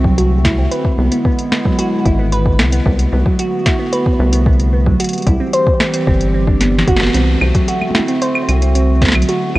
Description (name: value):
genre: IDM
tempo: 112 BPM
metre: 4/4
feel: straight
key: unclear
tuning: A4 = 439 Hz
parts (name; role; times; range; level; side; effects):
- warbly tape-like pad; sustained chords; 0.0-9.6 s; D3 to G4; -20 LUFS; equal; chorus, built-in reverb, vintage 12-bit sampler grit
- harp-like synth pluck; arpeggios; 0.0-9.6 s; F#3 to C5; -18 LUFS; right 1 dB; chorus, digital delay
- rubbery square bass; bass; 0.0-9.6 s; G1 to C2; -14 LUFS; equal; none
- electronic kick drum; drums; 0.0-9.1 s; none; -16 LUFS; equal; overdrive
- booming analog drum machine; drums; 0.2-9.6 s; claves, hi-hat, snare drum, toms; -19 LUFS; equal; none
room: light reverb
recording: worn, warbling old tape, cassette tape, warbly pitch drift, nothing above 10.7 kHz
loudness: -12 LUFS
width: side -18 dB against mid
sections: 0.0-7.1 A section; 7.1-9.6 B section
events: drum fill 6.6-7.1; band accent 7.0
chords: 0.0 D7/C; 0.7 E7/C; 2.9 Bm7/C; 5.0 C; 7.1 D7/C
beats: 0.18 | 0.71 1.25 1.79 2.32 | 2.86 3.39 3.93 4.46 | 5.00 5.54 6.07 6.61 | 7.14 7.68 8.21 8.75 | 9.29